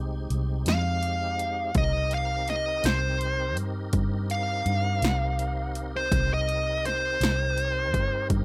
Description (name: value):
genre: slow blues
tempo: 55 BPM (dotted quarters)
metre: 12/8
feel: straight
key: C minor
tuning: A4 = 440 Hz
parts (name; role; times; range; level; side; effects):
- tonewheel organ; sustained chords; 0.0-8.4 s; Ab3 to Bb4; -40 LUFS; equal; slow rotary speaker, chorus vibrato
- vintage muted fingered electric bass; bass; 0.0-8.4 s; C2 to G2; -31 LUFS; equal; none
- punchy analog drum machine; drums; 0.3-8.4 s; hi-hat, kick drum, snare drum; -30 LUFS; equal; overdrive
- dark smooth lead guitar; melody; 0.7-8.3 s; C5 to F5; -30 LUFS; equal; overdrive, slapback echo
room: light reverb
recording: none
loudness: -27 LUFS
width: mono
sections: 0.0-8.4 A section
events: lead electric guitar solo 0.0-8.4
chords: 0.0 Fm7; 1.8 Cm7